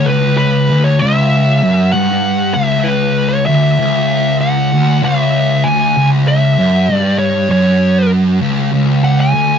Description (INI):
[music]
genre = metal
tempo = 97 BPM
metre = 4/4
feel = straight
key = C# phrygian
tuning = A4 = 440 Hz
[part]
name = fuzz lead guitar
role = melody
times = 0.0-9.6 s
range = B4 to G#5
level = -16 LUFS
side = equal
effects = distortion
[part]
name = thick fuzz guitar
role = riff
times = 0.0-9.6 s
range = C#2 to G2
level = -12 LUFS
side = equal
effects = distortion
[sound]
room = light reverb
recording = band playing live in one room, nothing above 7.5 kHz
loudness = -10 LUFS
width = side -7 dB against mid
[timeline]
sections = 0.0-8.7 A section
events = none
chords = 0.0 C#m; 8.7 C#5